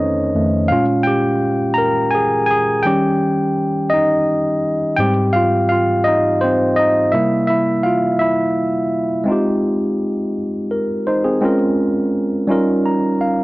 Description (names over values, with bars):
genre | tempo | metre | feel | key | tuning
R&B | 56 BPM (dotted quarters) | 6/8 | straight | F minor | A4 = 440 Hz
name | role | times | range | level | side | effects
tine electric piano | solo | 0.0-13.4 s | F2 to Bb5 | -14 LUFS | equal | none
room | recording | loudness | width
light reverb | worn, warbling old tape, cassette tape, warbly pitch drift, nothing above 10.4 kHz | -14 LUFS | side -20 dB against mid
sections
0.0-9.3 A section; 9.3-13.4 B section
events
tine electric piano solo 0.0-9.3; tine electric piano fill 12.5-13.4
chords
0.0 F7; 0.7 Bbm7; 2.8 Eb7; 5.0 Abmaj7; 7.1 C7; 9.3 Fm7; 11.4 Bbm7; 12.5 Eb7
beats
| 0.70 1.77 | 2.84 3.91 | 4.98 6.05 | 7.12 8.20 | 9.27 10.34 | 11.41 12.48